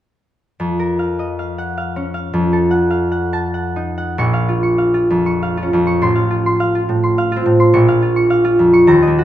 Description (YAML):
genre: classical, solo harp piece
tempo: 100 BPM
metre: 3/4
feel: uneven beats, rubato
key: Bb minor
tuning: A4 = 440 Hz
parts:
  - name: concert harp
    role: solo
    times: 0.6-9.2 s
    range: A1 to Db6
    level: -13 LUFS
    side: equal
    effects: none
room: moderate recital hall reverb, RT60 1.4 s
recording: minimal, uncompressed stereo recording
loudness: -13 LUFS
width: side -12 dB against mid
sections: 0.6-4.2 A section; 4.2-9.2 B section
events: none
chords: 0.6 Bbm/F; 2.3 F7b9; 4.2 Bbm; 6.0 F/A; 7.8 Bbm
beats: | 0.59 1.20 1.78 | 2.34 2.92 3.54 | 4.19 4.80 5.42 | 6.01 6.61 7.20 | 7.76 8.33 8.90